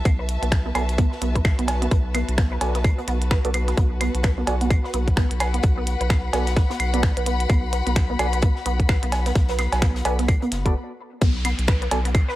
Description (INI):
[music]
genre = minimal techno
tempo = 129 BPM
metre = 4/4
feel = swing 60% on 16ths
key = unclear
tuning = A4 = 440 Hz
[part]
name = saturated sub bass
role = bass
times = 0.0-12.2 s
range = F#1 to B1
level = -24 LUFS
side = equal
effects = sidechain pumping
[part]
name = warm studio string section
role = texture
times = 0.0-10.8 s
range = F#4 to B5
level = -31 LUFS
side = left 4 dB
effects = sidechain pumping
[part]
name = resonant blip pluck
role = riff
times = 0.1-12.3 s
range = B3 to B4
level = -30 LUFS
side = right 2 dB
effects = phaser, ensemble chorus, sidechain pumping, tape echo
[part]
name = electronic kick drum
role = drums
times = 0.1-12.3 s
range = none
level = -19 LUFS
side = equal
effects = none
[part]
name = minimal click drum kit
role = drums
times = 0.1-12.3 s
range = finger snaps, hi-hat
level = -29 LUFS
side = equal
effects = none
[part]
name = open jazz drum kit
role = drums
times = 0.1-12.4 s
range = hi-hat, snare drum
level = -41 LUFS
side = left 2 dB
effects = none
[part]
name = claves and cowbell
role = percussion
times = 0.1-12.3 s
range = none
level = -28 LUFS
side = right 2 dB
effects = tape echo
[part]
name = percussive organ stab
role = stabs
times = 0.8-12.0 s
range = B3 to D5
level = -32 LUFS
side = right 3 dB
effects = wide subtle chorus, tape echo
[part]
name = downlifter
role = sound effects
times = 11.2-12.4 s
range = none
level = -33 LUFS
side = equal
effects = none
[sound]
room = studio ambience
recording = dry, gritty hardware recording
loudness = -19 LUFS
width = side -16 dB against mid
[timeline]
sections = 0.0-11.2 A section; 11.2-12.4 B section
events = fade-in on string section 0.0-11.2; break 10.8-11.2; drop 11.2-12.4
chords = 0.0 Bm7